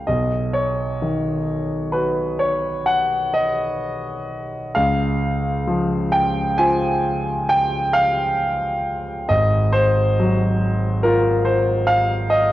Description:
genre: classical, impressionist solo piano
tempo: 63-72 BPM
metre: 5/4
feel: rubato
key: unclear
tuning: A4 = 444 Hz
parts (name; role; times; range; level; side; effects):
- clear concert grand piano; solo; 0.0-12.5 s; Ab1 to Ab5; -18 LUFS; equal; none
room: moderate concert hall reverb, RT60 1.8 s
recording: worn, warbling old tape, cassette tape, warbly pitch drift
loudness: -17 LUFS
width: side -14 dB against mid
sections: 0.0-12.5 A section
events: none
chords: 0.1 Cbadd9; 4.7 Dbmaj7; 9.3 Ab6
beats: | 0.08 1.01 1.94 2.87 3.81 | 4.74 5.67 6.58 7.49 8.39 | 9.29 10.19 11.05 11.89

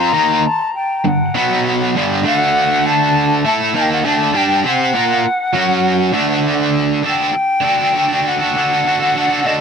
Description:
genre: rock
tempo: 100 BPM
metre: 4/4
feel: straight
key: unclear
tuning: A4 = 439 Hz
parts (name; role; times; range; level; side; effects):
- mellow silver concert flute; melody; 0.0-9.6 s; Eb5 to Bb5; -17 LUFS; left 1 dB; tape echo
- cranked stack guitar; riff; 0.0-9.6 s; G2 to C5; -15 LUFS; right 1 dB; overdrive, harmonic tremolo
room: moderate spring reverb, RT60 2.8 s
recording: echo-heavy mix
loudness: -13 LUFS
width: side -6 dB against mid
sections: 0.0-7.0 A section; 7.0-9.6 B section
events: none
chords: 0.0 G5; 1.3 B5; 1.9 G5; 2.2 D; 5.5 F#5; 6.1 D5; 7.0 D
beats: 0.45 1.05 1.65 | 2.25 2.85 3.45 4.05 | 4.65 5.25 5.84 6.45 | 7.04 7.65 8.25 8.85 | 9.45

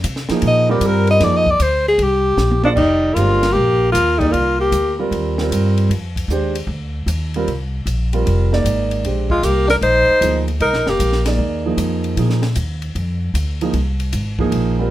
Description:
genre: modal jazz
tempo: 153 BPM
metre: 4/4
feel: swing 67% on 8ths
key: F dorian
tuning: A4 = 440 Hz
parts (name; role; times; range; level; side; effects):
- upright bass; bass; 0.0-14.9 s; F1 to C3; -19 LUFS; equal; none
- compact cocktail drum kit; drums; 0.0-14.6 s; crash cymbal, hi-hat, kick drum, ride cymbal, snare drum, toms; -28 LUFS; equal; none
- warm concert grand piano; accompaniment; 0.3-14.9 s; F3 to D5; -20 LUFS; right 4 dB; none
- clear alto saxophone; melody; 0.5-5.0, 9.3-11.3 s; D4 to Eb5; -15 LUFS; left 1 dB; none
- warm tenor saxophone; second line; 2.7-5.0, 9.3-11.3 s; F3 to Eb4; -22 LUFS; right 4 dB; none
room: light reverb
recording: none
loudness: -15 LUFS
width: side -14 dB against mid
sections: 0.0-2.8 A section; 2.8-14.9 B section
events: alto saxophone solo 0.0-2.8; drum fill 2.4-2.8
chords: 0.0 F9sus4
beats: 0.04 0.43 0.82 | 1.21 1.60 1.99 2.38 | 2.77 3.16 3.56 3.95 | 4.34 4.73 5.12 5.51 | 5.90 6.30 6.69 7.08 | 7.47 7.86 8.26 8.65 | 9.04 9.43 9.82 10.21 | 10.61 11.00 11.39 11.78 | 12.17 12.56 12.96 13.35 | 13.74 14.13 14.52

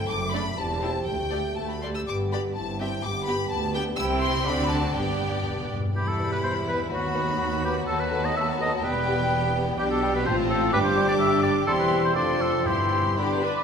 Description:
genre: quick classical-period movement for symphony orchestra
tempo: 116-128 BPM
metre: 2/4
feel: rubato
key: G major, E minor from 6.0 s, C major from 9.8 s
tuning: A4 = 440 Hz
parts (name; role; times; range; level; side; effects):
- rich chamber violin section; melody; 0.0-13.6 s; G4 to E6; -33 LUFS; left 3 dB; none
- warm French horn section; sustained chords; 0.0-13.4 s; A3 to B4; -30 LUFS; left 1 dB; none
- rich chamber double bass section; bass; 0.1-13.5 s; E1 to D#2; -32 LUFS; right 3 dB; none
- rich studio cello section; bass; 0.1-13.5 s; D2 to D3; -32 LUFS; right 2 dB; none
- clear chamber violin section; second line; 0.3-13.6 s; B3 to G5; -34 LUFS; left 4 dB; none
- rich chamber viola section; accompaniment; 0.3-13.6 s; G3 to B4; -32 LUFS; right 2 dB; none
- timpani; percussion; 1.1-1.5, 5.0-5.9, 10.7-13.1 s; G2 to D3; -34 LUFS; left 1 dB; none
- silver concert flute; second line; 6.0-13.6 s; G5 to D6; -31 LUFS; left 2 dB; none
- warm oboe; second line; 6.0-13.2 s; F#4 to E5; -28 LUFS; equal; none
- mellow bassoon; accompaniment; 6.0-13.4 s; D3 to G3; -32 LUFS; equal; none
room: wet concert hall reverb, RT60 1.9 s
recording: minimal, uncompressed stereo recording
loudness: -22 LUFS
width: side -6 dB against mid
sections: 0.0-6.0 A section; 6.0-13.6 B section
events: timpani fill 5.0-6.0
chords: 0.1 D/F#; 0.6 C/E; 1.1 Dsus4; 1.6 D; 2.1 G; 2.6 C/G; 3.0 G; 4.0 C; 4.5 D7; 5.0 G; 6.0 Em; 6.9 B/D#; 7.9 B7/D#; 8.8 Em; 9.8 G/B; 10.3 F/A; 10.7 G5; 11.7 C/E; 12.2 Dm7/F; 12.7 C/G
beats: | 0.09 0.57 | 1.06 1.57 | 2.08 2.56 | 3.04 3.51 | 3.98 4.46 | 4.96 5.46 | 5.96 6.44 | 6.92 7.40 | 7.88 8.36 | 8.84 9.31 | 9.79 10.26 | 10.73 11.20 | 11.67 12.16 | 12.66 13.18

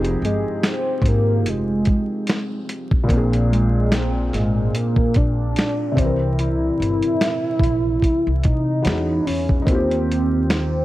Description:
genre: lo-fi hip hop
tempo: 73 BPM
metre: 4/4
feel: swing 57% on 16ths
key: F dorian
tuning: A4 = 440 Hz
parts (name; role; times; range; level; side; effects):
- felt-muted upright piano; accompaniment; 0.0-10.8 s; Bb2 to D5; -24 LUFS; equal; cassette tape
- upright bass; bass; 0.0-10.8 s; F1 to C3; -22 LUFS; equal; none
- dusty soul sampler-style drum kit; drums; 0.0-10.7 s; finger snaps, hi-hat, kick drum, snare drum; -21 LUFS; equal; none
- warm velvety synth lead; melody; 0.2-10.8 s; Ab3 to E4; -22 LUFS; equal; chorus, tremolo, analog delay
room: studio ambience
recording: vinyl crackle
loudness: -17 LUFS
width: side -16 dB against mid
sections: 0.0-10.8 A section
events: none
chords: 0.0 Fm7; 3.1 Bb9; 6.0 C9; 8.8 E69; 9.7 Eb69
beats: 0.63 1.45 2.27 | 3.09 3.91 4.74 5.56 | 6.38 7.20 8.02 8.85 | 9.67 10.49

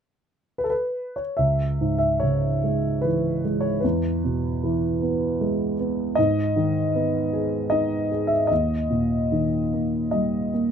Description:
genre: classical, lyrical solo piano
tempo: 76 BPM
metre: 3/4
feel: uneven beats, rubato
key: C# minor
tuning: A4 = 440 Hz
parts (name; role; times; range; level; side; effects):
- dark baby grand piano; solo; 0.6-10.7 s; C#2 to E5; -21 LUFS; equal; none
room: light reverb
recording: close, detailed microphones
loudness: -21 LUFS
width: side -8 dB against mid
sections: 0.0-1.4 A section; 1.4-10.7 B section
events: none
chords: 0.0 N.C.; 1.4 C#m; 3.8 E; 6.2 G#m; 8.5 D#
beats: 0.59 | 1.39 2.23 3.04 | 3.84 4.62 5.40 | 6.18 6.95 7.72 | 8.51 9.32 10.14

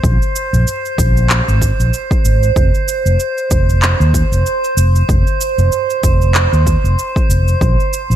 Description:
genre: organic downtempo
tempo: 95 BPM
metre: 4/4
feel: swing 57% on 16ths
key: F minor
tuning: A4 = 441 Hz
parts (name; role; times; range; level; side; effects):
- fretless electric bass; bass; 0.0-8.2 s; F1 to Eb2; -13 LUFS; equal; sidechain pumping
- electronic kick drum; drums; 0.0-7.8 s; none; -16 LUFS; equal; overdrive
- electronic shaker and handclaps; drums; 0.0-8.2 s; none; -20 LUFS; right 1 dB; none
- drifting glass-harmonics texture; texture; 0.0-8.2 s; C5; -18 LUFS; right 3 dB; chorus, built-in reverb
- udu; percussion; 0.5-0.6, 5.6-5.7 s; none; -21 LUFS; equal; none
room: little or no reverb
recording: none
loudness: -11 LUFS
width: side -11 dB against mid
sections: 0.0-8.2 A section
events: none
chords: 0.0 Abadd9; 2.6 F5; 7.6 Bb5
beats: | 0.03 0.66 1.30 1.93 | 2.56 3.19 3.82 4.45 | 5.09 5.72 6.35 6.98 | 7.61

